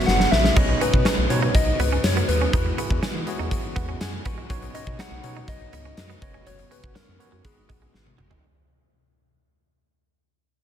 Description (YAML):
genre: 1980s-style pop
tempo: 122 BPM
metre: 4/4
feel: straight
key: unclear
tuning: A4 = 440 Hz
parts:
  - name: soft struck synth lead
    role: melody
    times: 0.0-8.1 s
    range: G#4 to F#5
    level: -27 LUFS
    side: left 2 dB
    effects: chorus
  - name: barky tine electric piano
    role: accompaniment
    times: 0.0-8.5 s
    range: B3 to C#6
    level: -33 LUFS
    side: equal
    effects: fast stereo tremolo
  - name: biting overdriven guitar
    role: accompaniment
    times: 0.0-8.9 s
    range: E2 to B3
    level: -35 LUFS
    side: left 2 dB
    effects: ensemble chorus
  - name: brassy analog pad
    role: sustained chords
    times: 0.0-8.4 s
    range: B2 to F#4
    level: -36 LUFS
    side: right 1 dB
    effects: none
  - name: rubbery square bass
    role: bass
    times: 0.1-8.4 s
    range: F#1 to E3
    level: -26 LUFS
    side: equal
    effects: none
  - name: huge arena drum kit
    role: drums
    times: 0.1-8.4 s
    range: hi-hat, kick drum, snare drum, splash cymbal, tambourine, toms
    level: -23 LUFS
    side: equal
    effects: gated reverb
  - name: direct-recorded clean electric guitar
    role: riff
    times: 0.6-8.4 s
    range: F#3 to D#4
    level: -33 LUFS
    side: right 10 dB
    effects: analog chorus
room: studio ambience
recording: none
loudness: -19 LUFS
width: side -10 dB against mid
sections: 0.0-8.4 A section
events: fade-out 0.0-8.4; drum fill 0.1-0.6, 7.9-8.4; tine electric piano fill 3.5-4.5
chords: 0.0 F#sus4; 0.6 Badd9; 2.5 Eadd9; 4.5 Badd9; 6.2 F#sus4; 7.4 G#m7